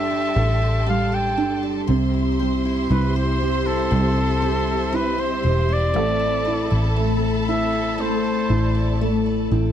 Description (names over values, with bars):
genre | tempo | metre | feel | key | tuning
pop ballad | 59 BPM | 4/4 | straight | C major | A4 = 440 Hz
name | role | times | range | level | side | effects
clear flugelhorn | melody | 0.0-9.0 s | A4 to G5 | -24 LUFS | equal | none
clear studio violin section | second line | 0.0-9.7 s | A4 to C6 | -32 LUFS | right 2 dB | none
felt-muted upright piano | accompaniment | 0.0-9.7 s | C3 to A4 | -25 LUFS | right 6 dB | none
warm studio string section | sustained chords | 0.0-9.7 s | C4 to C6 | -31 LUFS | left 2 dB | none
picked steel-string acoustic guitar | arpeggios | 0.0-9.7 s | A2 to C5 | -27 LUFS | left 15 dB | none
vintage muted fingered electric bass | bass | 0.0-9.7 s | E1 to C2 | -22 LUFS | equal | none
room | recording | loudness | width
little or no reverb | dry, close 1970s-style studio recording | -18 LUFS | side -10 dB against mid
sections
0.0-9.7 A section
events
none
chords
0.0 Gsus2; 1.9 C; 5.9 Amadd9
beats
0.86 | 1.88 2.90 3.91 4.93 | 5.95 6.96 7.98 9.00